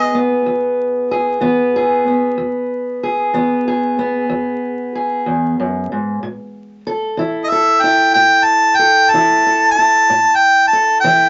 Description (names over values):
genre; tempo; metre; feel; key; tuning
acoustic country blues, solo or duo; 62 BPM (dotted quarters); 12/8; straight; E major; A4 = 440 Hz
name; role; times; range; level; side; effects
bright harmonica; melody; 0.0-0.2, 7.4-11.3 s; D#5 to A5; -12 LUFS; equal; none
fingerpicked steel-string acoustic guitar; accompaniment; 0.0-11.3 s; E2 to A4; -20 LUFS; equal; none
room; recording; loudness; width
moderate club reverb, RT60 0.5 s; vinyl crackle, nothing above 7.7 kHz; -15 LUFS; mono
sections
0.0-11.3 A section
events
none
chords
0.0 E; 6.2 A5